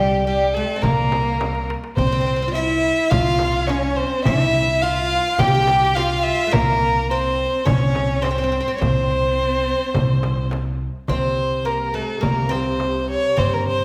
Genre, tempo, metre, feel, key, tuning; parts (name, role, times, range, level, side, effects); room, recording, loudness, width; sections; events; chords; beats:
Turkish makam ensemble; 105 BPM; 4/4; straight; C makam hicaz; A4 = 440 Hz
warm violin; melody; 0.0-13.8 s; G4 to G5; -23 LUFS; equal
oud; second line; 0.0-13.8 s; G3 to G4; -29 LUFS; equal
rich cello; second line; 0.0-10.5 s; G3 to G4; -28 LUFS; equal
upright bass; bass; 0.0-13.8 s; C2 to G2; -26 LUFS; equal
darbuka; percussion; 0.4-10.7 s; -29 LUFS; equal
frame drum; percussion; 0.8-13.5 s; -29 LUFS; equal
mellow duduk; drone; 11.1-13.8 s; C3; -34 LUFS; equal
wet recital hall reverb, RT60 1.4 s; heard from further back in the room; -20 LUFS; mono
0.0-11.1 A section; 11.1-13.8 B section
drum fill 1.4-2.0
0.27 0.84 1.41 | 1.98 2.55 3.12 3.69 | 4.26 4.83 5.39 5.96 | 6.53 7.10 7.67 8.24 | 8.81 9.38 9.95 10.52 | 11.09 11.66 12.23 12.80 | 13.38